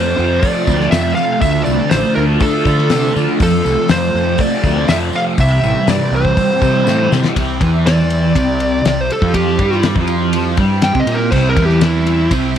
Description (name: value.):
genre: psychedelic rock.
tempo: 121 BPM.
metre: 4/4.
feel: straight.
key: C major.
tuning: A4 = 439 Hz.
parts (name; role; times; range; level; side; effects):
fuzz lead guitar; melody; 0.0-12.3 s; E4 to G5; -18 LUFS; equal; distortion, slapback echo.
phased string machine; sustained chords; 0.0-12.6 s; E3 to A4; -24 LUFS; right 12 dB; ensemble chorus, phaser.
thick fuzz guitar; riff; 0.0-12.6 s; C3 to D4; -17 LUFS; equal; distortion, phaser.
fuzz fingered electric bass; bass; 0.0-12.6 s; A1 to D3; -18 LUFS; equal; overdrive.
tambourine; percussion; 0.2-7.2 s; none; -37 LUFS; left 12 dB; none.
damped 70s drum kit; drums; 0.4-12.6 s; crash cymbal, hi-hat, kick drum, ride cymbal, snare drum; -19 LUFS; left 2 dB; none.
room: light reverb, studio reverb.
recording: 1960s-style stereo with parts hard left and right.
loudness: -12 LUFS.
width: side -9 dB against mid.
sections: 0.0-7.4 A section; 7.4-12.6 B section.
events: drum fill 6.9-7.4; lead electric guitar solo 7.4-12.6.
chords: 0.0 F; 1.4 Dm; 3.4 F; 5.4 C.